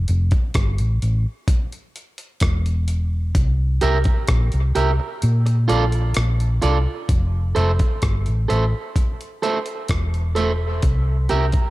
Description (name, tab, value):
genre	dub reggae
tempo	64 BPM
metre	4/4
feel	straight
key	F major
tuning	A4 = 439 Hz
part	hollow-body short-scale fingered electric bass	bass	0.0-11.5 s	E1 to Bb2	-19 LUFS	equal	none
part	breakbeat sampler-style drum kit	drums	0.1-11.7 s	hi-hat, kick drum, rim click	-20 LUFS	equal	none
part	electric guitar at the edge of break-up	accompaniment	3.8-11.5 s	F4 to E5	-24 LUFS	right 3 dB	spring reverb, dub echo
room	little or no reverb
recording	dark, warm production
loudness	-18 LUFS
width	side -18 dB against mid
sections	0.0-7.1 A section; 7.1-11.7 B section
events	break 0.0-3.3; kick muted 5.2-7.1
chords	0.0 Fmaj7 (rootless); 3.3 C7; 5.2 Bbmaj7; 7.1 Fmaj7; 10.8 C7